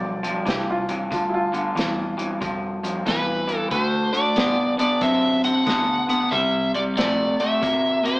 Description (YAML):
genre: electric blues shuffle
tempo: 92 BPM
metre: 4/4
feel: swing 65% on 8ths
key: G mixolydian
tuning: A4 = 440 Hz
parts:
  - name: clear upright piano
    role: second line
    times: 0.0-2.6 s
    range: E4 to D5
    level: -28 LUFS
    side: equal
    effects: none
  - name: electric guitar through a small old amp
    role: riff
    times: 0.0-8.2 s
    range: G2 to C4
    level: -22 LUFS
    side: equal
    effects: none
  - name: vintage muted fingered electric bass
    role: bass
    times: 0.0-8.2 s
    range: G1 to G2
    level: -36 LUFS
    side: equal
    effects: none
  - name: vintage drum kit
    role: drums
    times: 0.2-8.2 s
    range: hi-hat, kick drum, snare drum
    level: -29 LUFS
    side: equal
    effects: none
  - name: overdriven slide guitar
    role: melody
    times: 3.1-8.2 s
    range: B4 to F#5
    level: -22 LUFS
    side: equal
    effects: none
room: wet stone room reverb, RT60 1.2 s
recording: band playing live in one room, AM radio sound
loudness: -19 LUFS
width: side -24 dB against mid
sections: 0.0-8.2 A section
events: none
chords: 0.0 G7(no3); 3.7 D7; 6.3 C7